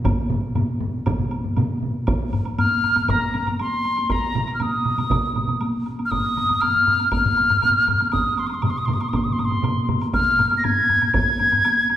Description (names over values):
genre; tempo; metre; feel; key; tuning
japanese traditional, taiko drum ensemble; 119 BPM; 4/4; straight; unclear; A4 = 441 Hz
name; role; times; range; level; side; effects
taiko ensemble; percussion; 0.0-11.6 s; none; -26 LUFS; left 2 dB; none
taiko ensemble; percussion; 0.0-10.0 s; none; -27 LUFS; right 2 dB; none
taiko ensemble; percussion; 0.1-12.0 s; none; -27 LUFS; equal; none
taiko ensemble; percussion; 0.1-11.3 s; none; -27 LUFS; right 1 dB; none
woodblock; percussion; 0.1-12.0 s; none; -35 LUFS; right 4 dB; none
wooden piccolo; melody; 2.6-12.0 s; Bb5 to Bb6; -19 LUFS; left 1 dB; none
room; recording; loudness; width
wet recital hall reverb, RT60 1.8 s; recorded in a church or concert hall; -18 LUFS; side -11 dB against mid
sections
0.0-2.1 A section; 2.1-12.0 B section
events
none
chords
none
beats
| 0.05 0.56 1.06 1.57 | 2.08 2.58 3.09 3.60 | 4.10 4.61 5.11 5.62 | 6.12 6.62 7.13 7.63 | 8.13 8.64 9.14 9.64 | 10.14 10.65 11.15 11.65